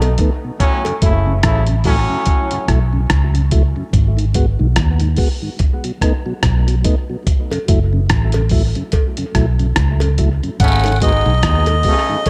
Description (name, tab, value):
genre	dub reggae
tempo	72 BPM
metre	4/4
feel	swing 58% on 16ths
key	F# dorian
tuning	A4 = 439 Hz
part	brilliant trombone section	second line	0.0-2.6, 10.6-12.3 s	A2 to E4	-24 LUFS	equal	dub echo
part	mellow tonewheel organ	accompaniment	0.0-12.2 s	F#2 to F#4	-26 LUFS	equal	slow rotary speaker, tape echo
part	vintage muted fingered electric bass	bass	0.0-11.8 s	F#1 to D#2	-17 LUFS	equal	none
part	dusty soul sampler-style drum kit	drums	0.0-12.3 s	hi-hat, kick drum, rim click	-19 LUFS	equal	none
part	cowbell and jawbone-type rattle	percussion	0.0-1.0, 7.5-12.3 s	none	-29 LUFS	equal	dub echo
part	melodica	melody	10.6-12.3 s	D#5 to F#5	-20 LUFS	equal	dub echo
room	light reverb, digital ambience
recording	echo-heavy mix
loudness	-16 LUFS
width	mono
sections	0.0-12.3 A section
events	break 0.0-10.6; part muted 0.6-7.3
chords	0.0 B7; 0.6 F#m7; 3.9 G#m7; 5.6 B7; 7.3 F#m7; 10.6 G#m7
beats	| 0.60 1.44 2.27 3.10 | 3.94 4.77 5.60 6.43 | 7.27 8.10 8.93 9.77 | 10.60 11.43 12.27